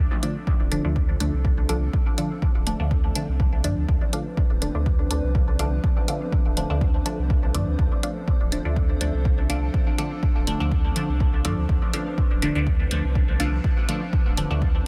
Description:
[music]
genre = dub techno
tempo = 123 BPM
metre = 4/4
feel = swing 54% on 16ths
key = D dorian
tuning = A4 = 440 Hz
[part]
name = warbly tape-like pad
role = sustained chords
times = 0.0-14.9 s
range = F3 to B4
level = -37 LUFS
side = equal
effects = chorus, built-in reverb, sidechain pumping
[part]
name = warm sub bass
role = bass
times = 0.0-14.8 s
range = D1 to G2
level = -27 LUFS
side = equal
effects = tube saturation, sidechain pumping
[part]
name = flickering grainy texture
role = texture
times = 0.7-14.9 s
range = C4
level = -44 LUFS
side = equal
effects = none
[part]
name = filtered dub chord stab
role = riff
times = 0.2-14.0 s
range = A4 to F5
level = -41 LUFS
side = equal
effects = phaser, sidechain pumping, dub echo
[part]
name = filtered dub chord stab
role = stabs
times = 0.2-14.6 s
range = D3 to D4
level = -31 LUFS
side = equal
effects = phaser, sidechain pumping, dub echo
[part]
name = electronic hi-hat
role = drums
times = 0.2-14.5 s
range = none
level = -31 LUFS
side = equal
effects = small room ambience
[part]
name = electronic kick drum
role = drums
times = 0.5-14.7 s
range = none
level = -25 LUFS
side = equal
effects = small room ambience
[sound]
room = little or no reverb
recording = dense, heavily limited modern master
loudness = -23 LUFS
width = mono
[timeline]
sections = 0.0-14.9 A section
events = none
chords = 0.0 Dm

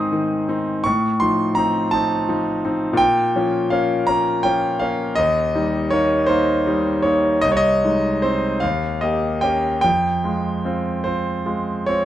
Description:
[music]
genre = classical, romantic nocturne for solo piano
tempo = 46-57 BPM (dotted quarters)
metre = 12/8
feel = rubato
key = unclear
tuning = A4 = 442 Hz
[part]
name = bright concert grand piano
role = solo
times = 0.0-12.1 s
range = C2 to Eb6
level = -17 LUFS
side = equal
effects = none
[sound]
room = light reverb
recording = dark, warm production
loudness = -17 LUFS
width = side -12 dB against mid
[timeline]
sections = 0.0-12.1 A section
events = none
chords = 0.0 Ab; 0.8 F7/A; 3.0 Bbm; 5.2 Eb; 7.4 Ab/C; 8.6 Eb7; 9.8 Fm

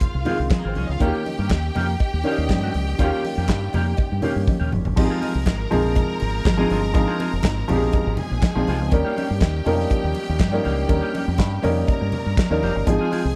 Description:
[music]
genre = disco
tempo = 121 BPM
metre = 4/4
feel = straight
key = Ab major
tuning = A4 = 440 Hz
[part]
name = clear studio string section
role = second line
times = 0.0-13.4 s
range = Ab3 to Bb5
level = -33 LUFS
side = equal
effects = none
[part]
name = clean electric guitar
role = accompaniment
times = 0.0-13.3 s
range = Bb3 to Ab4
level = -33 LUFS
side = equal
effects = lush chorus
[part]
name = warm baby grand piano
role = accompaniment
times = 0.0-13.4 s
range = Eb3 to Bb4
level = -26 LUFS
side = equal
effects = none
[part]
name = warm soul drum kit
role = drums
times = 0.0-13.2 s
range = crash cymbal, handclaps, hi-hat, kick drum, snare drum, toms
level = -23 LUFS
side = equal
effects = none
[part]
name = congas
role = percussion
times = 0.0-13.2 s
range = none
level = -32 LUFS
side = equal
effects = none
[part]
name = deep dub fingered electric bass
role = bass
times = 0.1-13.3 s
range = F1 to G2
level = -26 LUFS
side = equal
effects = none
[part]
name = cowbell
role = percussion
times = 1.0-13.2 s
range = none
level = -42 LUFS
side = equal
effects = none
[sound]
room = small room ambience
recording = dry, close 1970s-style studio recording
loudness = -21 LUFS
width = mono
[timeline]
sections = 0.0-5.0 A section; 5.0-13.4 B section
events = drum fill 4.5-5.0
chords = 0.0 Ab6; 1.0 Eb7; 5.0 Ab6; 8.9 Eb7

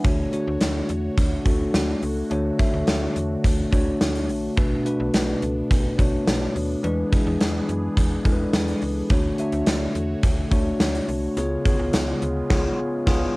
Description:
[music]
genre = 1980s-style pop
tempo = 106 BPM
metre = 4/4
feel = straight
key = unclear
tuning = A4 = 440 Hz
[part]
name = bell-like tine electric piano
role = accompaniment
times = 0.0-13.4 s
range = B2 to E5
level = -24 LUFS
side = left 1 dB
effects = cassette tape
[part]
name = phased analog pad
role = sustained chords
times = 0.0-13.4 s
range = C#3 to C#5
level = -35 LUFS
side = right 2 dB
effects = phaser, chorus, cassette tape
[part]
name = slap-like FM bass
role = bass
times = 0.0-13.3 s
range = A#1 to F#2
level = -28 LUFS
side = equal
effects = none
[part]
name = gated 80s drum kit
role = drums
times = 0.0-13.3 s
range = crash cymbal, hi-hat, kick drum, snare drum, tambourine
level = -22 LUFS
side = equal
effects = cassette tape
[sound]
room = light reverb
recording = home recording on cassette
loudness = -20 LUFS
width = side -23 dB against mid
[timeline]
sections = 0.0-13.4 A section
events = band accent 12.5-13.4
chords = 0.0 Dmaj7; 4.6 Bm7; 6.8 E7; 9.1 Dmaj7; 11.4 C#7

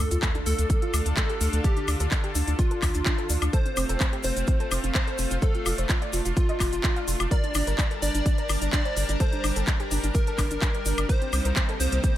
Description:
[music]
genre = progressive house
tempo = 127 BPM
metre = 4/4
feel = straight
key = G minor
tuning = A4 = 442 Hz
[part]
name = plucky unison lead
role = melody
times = 0.0-12.2 s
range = F4 to D5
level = -32 LUFS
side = equal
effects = dub echo
[part]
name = lush unison pad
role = sustained chords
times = 0.0-12.2 s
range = C3 to A5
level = -34 LUFS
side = equal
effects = chorus, sidechain pumping
[part]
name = soft round pluck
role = arpeggios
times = 0.0-12.1 s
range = A3 to F5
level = -33 LUFS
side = equal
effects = ensemble chorus, sidechain pumping, dub echo
[part]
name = round analog bass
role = bass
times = 0.0-12.0 s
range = F1 to D2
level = -26 LUFS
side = equal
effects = sidechain pumping
[part]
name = sub drop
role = sound effects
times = 0.0-1.6 s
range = none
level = -38 LUFS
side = equal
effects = none
[part]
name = house drum kit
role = drums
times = 0.1-12.1 s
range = handclaps, hi-hat, woodblock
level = -31 LUFS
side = left 1 dB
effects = sidechain pumping on hats, sidechain pumping on perc
[part]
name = tube shaker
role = percussion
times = 0.1-12.1 s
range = none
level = -36 LUFS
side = left 6 dB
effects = none
[part]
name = electronic kick drum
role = drums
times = 0.2-12.1 s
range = none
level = -24 LUFS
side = equal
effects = none
[sound]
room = little or no reverb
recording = none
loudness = -22 LUFS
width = side -13 dB against mid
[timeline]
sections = 0.0-12.2 A section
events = impact 0.0-1.6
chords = 0.0 Dm; 3.5 F; 7.3 Gmadd9; 11.1 Cm7

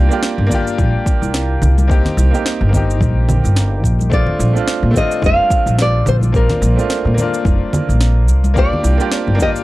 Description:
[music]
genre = sunset chillout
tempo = 108 BPM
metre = 4/4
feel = swing 57% on 16ths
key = Bb major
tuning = A4 = 440 Hz
[part]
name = bright baby grand piano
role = accompaniment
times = 0.0-9.6 s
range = A3 to G4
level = -20 LUFS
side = moving between left 5 dB and right 4 dB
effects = auto-pan, analog delay
[part]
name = upright bass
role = bass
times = 0.0-9.4 s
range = F1 to Bb2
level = -14 LUFS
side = equal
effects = tube saturation
[part]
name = electronic cabasa, snare drum and congas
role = drums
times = 0.1-9.6 s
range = none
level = -23 LUFS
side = right 1 dB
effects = none
[part]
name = congas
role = percussion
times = 0.4-9.5 s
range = none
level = -25 LUFS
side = left 2 dB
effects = none
[part]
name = electronic kick drum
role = drums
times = 0.5-9.5 s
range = none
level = -17 LUFS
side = equal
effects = none
[part]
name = nylon-string guitar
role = melody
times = 4.1-9.5 s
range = Bb4 to F5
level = -19 LUFS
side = equal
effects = none
[sound]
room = small room ambience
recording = dry, gritty hardware recording, cassette tape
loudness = -12 LUFS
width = side -18 dB against mid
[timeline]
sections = 0.0-9.6 A section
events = none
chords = 0.0 C7sus4; 1.9 Eb6; 4.1 Bbmaj7; 8.6 C7sus4

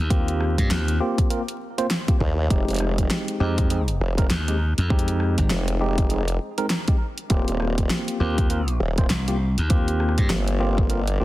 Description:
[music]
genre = glitch hop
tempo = 100 BPM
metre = 4/4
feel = swing 59% on 16ths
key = unclear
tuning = A4 = 440 Hz
[part]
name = glassy slap bass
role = bass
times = 0.0-10.3 s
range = Ab1 to G2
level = -22 LUFS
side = equal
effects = none
[part]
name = tine electric piano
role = stabs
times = 0.1-11.2 s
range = Ab3 to C5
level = -27 LUFS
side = equal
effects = medium stereo tremolo, sidechain pumping, digital delay
[part]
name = electronic kick drum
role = drums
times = 0.1-10.9 s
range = none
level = -21 LUFS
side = equal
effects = none
[part]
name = pop drum kit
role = drums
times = 0.1-11.2 s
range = hi-hat, rim click, snare drum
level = -28 LUFS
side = equal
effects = none
[part]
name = formant-sweep wobble bass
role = bass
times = 2.2-11.2 s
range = Eb1 to Eb2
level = -23 LUFS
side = equal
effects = chorus, tube saturation
[sound]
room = little or no reverb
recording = dense, heavily limited modern master, vinyl crackle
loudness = -20 LUFS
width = side -16 dB against mid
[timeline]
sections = 0.0-11.2 A section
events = none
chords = 0.0 Eb6; 2.5 Fm7; 7.3 Eb6

